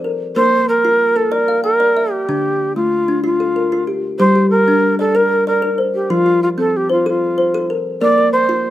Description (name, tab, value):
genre	southern african traditional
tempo	126 BPM (dotted quarters)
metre	12/8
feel	straight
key	G dorian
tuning	A4 = 439 Hz
part	kalimba	arpeggios	0.0-8.7 s	D3 to G5	-18 LUFS	left 1 dB	slapback echo
part	mellow low Native American-style wooden flute	melody	0.4-8.7 s	F4 to D5	-14 LUFS	equal	slapback echo
room	little or no reverb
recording	recorded outdoors, with no room sound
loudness	-13 LUFS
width	side -13 dB against mid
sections	0.0-4.2 A section; 4.2-8.7 B section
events	none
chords	0.4 Bb; 2.3 Dm; 4.2 Gm; 6.1 F; 8.0 Bb